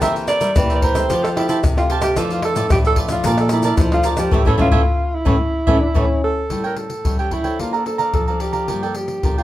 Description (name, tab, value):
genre	samba and choro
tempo	111 BPM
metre	4/4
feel	straight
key	unclear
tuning	A4 = 437 Hz
part	breathy alto saxophone	melody	0.0-9.4 s	E4 to E5	-21 LUFS	right 1 dB	none
part	cavaquinho	accompaniment	0.0-9.4 s	E4 to Bb5	-24 LUFS	right 5 dB	none
part	nylon-string guitar	accompaniment	0.0-9.4 s	F2 to C5	-25 LUFS	left 3 dB	none
part	nylon-string guitar	bass	0.0-6.1 s	A2 to G3	-22 LUFS	equal	none
part	tube shaker, surdo, pandeiro and tamborim	percussion	0.0-9.4 s	none	-19 LUFS	left 1 dB	none
part	breathy trombone	second line	5.7-6.5 s	C#4 to D4	-24 LUFS	left 3 dB	none
room	moderate large studio reverb, RT60 1.1 s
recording	minimal, uncompressed stereo recording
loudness	-15 LUFS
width	side -14 dB against mid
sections	0.0-6.5 A section; 6.5-9.4 B section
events	band accent 4.3-6.5; drum fill 5.4-6.5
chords	0.0 C7/E; 1.1 Fadd9; 2.2 Dmadd9/F; 3.2 Bbmaj7; 4.3 A; 6.5 A7; 7.6 Bbmaj9; 8.7 Gm7